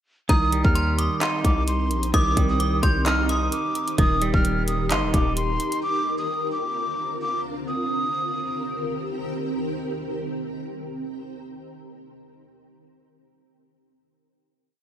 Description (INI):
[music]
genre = hip hop, trap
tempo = 130 BPM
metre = 4/4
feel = half-time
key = C minor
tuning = A4 = 440 Hz
[part]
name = breathy jazz flute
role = melody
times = 0.3-9.0 s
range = C6 to G6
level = -26 LUFS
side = equal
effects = low-pass filter
[part]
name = metallic FM bell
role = second line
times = 0.3-3.9 s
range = Bb5 to F6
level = -31 LUFS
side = left 1 dB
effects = chorus, digital delay
[part]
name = semi-hollow electric guitar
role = accompaniment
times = 0.3-5.8 s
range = Eb3 to Eb4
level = -27 LUFS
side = right 4 dB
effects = spring reverb, low-pass filter
[part]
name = granular cloud pad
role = sustained chords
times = 1.3-11.8 s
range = D3 to Bb4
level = -30 LUFS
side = equal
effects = built-in reverb, ensemble chorus
[part]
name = distorted 808-style bass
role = bass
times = 0.3-5.6 s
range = Eb1 to Eb2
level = -24 LUFS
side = equal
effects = distortion
[part]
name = trap drum kit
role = drums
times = 0.3-5.8 s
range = handclaps, hi-hat, kick drum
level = -23 LUFS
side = equal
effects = gated reverb
[sound]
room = light reverb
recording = bright 1980s-style digital production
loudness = -21 LUFS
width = side -10 dB against mid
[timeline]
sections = 0.3-7.7 hook; 7.7-11.4 final chord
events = none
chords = 0.3 Cm7; 4.0 Eb; 5.8 Bbadd9; 7.7 Cm7